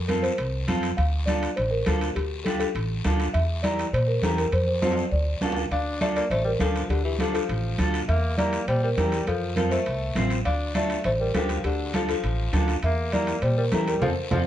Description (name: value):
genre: latin, cumbia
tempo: 202 BPM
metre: 4/4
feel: straight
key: D minor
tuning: A4 = 440 Hz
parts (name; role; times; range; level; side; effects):
- buzzing marimba with soft mallets; melody; 0.0-14.4 s; G4 to F5; -28 LUFS; left 1 dB; none
- upright bass; bass; 0.0-14.4 s; A1 to Bb2; -26 LUFS; equal; none
- electric guitar at the edge of break-up; accompaniment; 0.1-14.4 s; C4 to C5; -30 LUFS; equal; none
- congas; percussion; 0.1-14.4 s; none; -30 LUFS; right 2 dB; none
- guiro; percussion; 0.1-14.4 s; none; -39 LUFS; left 5 dB; none
- timbales; percussion; 0.1-14.4 s; none; -36 LUFS; right 4 dB; none
- raspy tenor saxophone; second line; 5.7-14.4 s; D3 to D4; -32 LUFS; left 2 dB; none
room: moderate studio reverb, RT60 0.8 s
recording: nothing above 10.8 kHz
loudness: -22 LUFS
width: side -11 dB against mid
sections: 0.0-5.7 A section; 5.7-14.5 A section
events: drum fill 4.8-5.7, 14.0-14.5; band accent 14.0-14.5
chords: 0.0 F; 1.0 Dm; 3.3 Edim; 4.5 F; 5.1 Dm; 8.1 Edim; 9.3 F; 10.5 Dm; 12.8 Edim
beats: 0.09 0.39 0.68 | 0.98 1.27 1.57 1.87 | 2.16 2.46 2.75 3.05 | 3.35 3.64 3.94 4.23 | 4.53 4.83 5.12 5.42 | 5.71 6.01 6.30 6.60 | 6.90 7.19 7.49 7.79 | 8.08 8.38 8.68 8.97 | 9.27 9.57 9.86 10.16 | 10.46 10.76 11.05 11.35 | 11.65 11.94 12.24 12.54 | 12.84 13.13 13.43 13.73 | 14.02 14.32